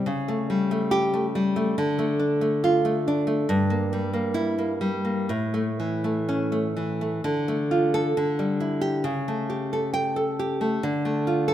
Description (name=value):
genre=romantic piece for solo classical guitar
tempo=61-71 BPM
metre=2/4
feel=rubato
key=D minor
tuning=A4 = 440 Hz
part: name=nylon-string guitar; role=solo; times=0.0-11.5 s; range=G2 to G5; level=-22 LUFS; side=equal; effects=none
room=moderate concert hall reverb, RT60 1.8 s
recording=minimal, uncompressed stereo recording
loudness=-22 LUFS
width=side -11 dB against mid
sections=0.0-7.2 A section; 7.2-11.5 B section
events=none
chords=0.1 A7/C#; 1.8 Dm; 3.5 Edim/G; 5.3 A; 7.2 Dm; 8.1 Dsus24; 9.1 A7/C#; 10.8 Dm